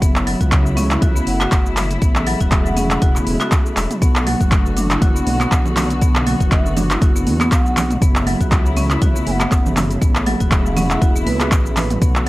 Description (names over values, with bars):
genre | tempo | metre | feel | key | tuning
afro house | 120 BPM | 4/4 | swing 55% on 16ths | B dorian | A4 = 440 Hz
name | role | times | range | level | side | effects
muted studio string section | sustained chords | 0.0-12.3 s | C#3 to F#4 | -24 LUFS | left 1 dB | sidechain pumping
marimba with hard mallets | arpeggios | 0.0-12.3 s | F#3 to B4 | -23 LUFS | equal | sidechain pumping, analog delay
dark detuned saw bass | bass | 0.0-12.3 s | E1 to E2 | -22 LUFS | equal | sidechain pumping
deep house drum kit | drums | 0.0-12.3 s | handclaps, hi-hat, shaker, toms | -22 LUFS | equal | overdrive, studio reverb
electronic kick drum | drums | 0.0-12.1 s | none | -16 LUFS | equal | studio reverb
mellow hollow bass bansuri | melody | 1.3-11.2 s | E5 to G#5 | -29 LUFS | right 1 dB | vintage 12-bit sampler grit, analog delay
congas | percussion | 4.3-12.3 s | none | -24 LUFS | right 3 dB | none
room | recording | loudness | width
small room ambience | dry, gritty hardware recording | -14 LUFS | side -18 dB against mid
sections
0.0-12.3 A section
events
none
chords
0.0 F#m7; 2.0 Amaj7; 4.0 Bm7; 8.0 F#m7; 10.0 Amaj7